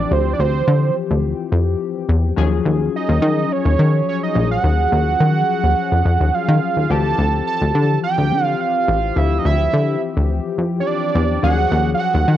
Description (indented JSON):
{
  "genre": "early-eighties boogie funk",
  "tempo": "106 BPM",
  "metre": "4/4",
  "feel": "straight",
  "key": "unclear",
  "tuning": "A4 = 439 Hz",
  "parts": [
    { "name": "fat analog lead", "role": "melody", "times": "0.0-12.4 s", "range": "C5 to A5", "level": "-20 LUFS", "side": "right 6 dB", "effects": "chorus, cassette tape" },
    { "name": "funky polysynth comp", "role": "accompaniment", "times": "0.0-12.4 s", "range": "E3 to Ab4", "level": "-23 LUFS", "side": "left 10 dB", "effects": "chorus" },
    { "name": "plucky analog bass", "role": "bass", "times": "0.0-12.4 s", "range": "A1 to Eb3", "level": "-16 LUFS", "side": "left 1 dB", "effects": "none" }
  ],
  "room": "light reverb",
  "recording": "home recording on cassette",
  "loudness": "-15 LUFS",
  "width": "side -12 dB against mid",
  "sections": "0.0-12.4 A section",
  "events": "none",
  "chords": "0.0 Dm11; 2.4 Ebm11; 6.9 Dm11; 11.4 Ebm11",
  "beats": "| 0.11 0.68 1.24 1.81 | 2.37 2.94 3.51 4.07 | 4.64 5.20 5.77 6.34 | 6.90 7.47 8.03 8.60 | 9.17 9.73 10.30 10.86 | 11.43 12.00"
}